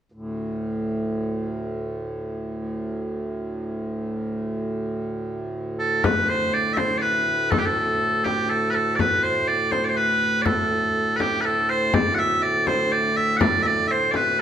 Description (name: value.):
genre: medieval dance.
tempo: 122 BPM.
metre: 3/4.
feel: straight.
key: unclear.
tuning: A4 = 440 Hz.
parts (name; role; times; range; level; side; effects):
pedal harmonium; drone; 0.1-14.4 s; D2 to A2; -27 LUFS; right 1 dB; none.
loud bright bagpipes; melody; 5.8-14.4 s; G4 to F#5; -20 LUFS; right 1 dB; none.
frame drum; percussion; 6.0-14.4 s; none; -25 LUFS; left 3 dB; none.
room: wet recital hall reverb, RT60 1.5 s.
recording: none.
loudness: -21 LUFS.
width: side -9 dB against mid.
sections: 0.1-6.0 A section; 6.0-14.4 B section.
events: none.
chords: none.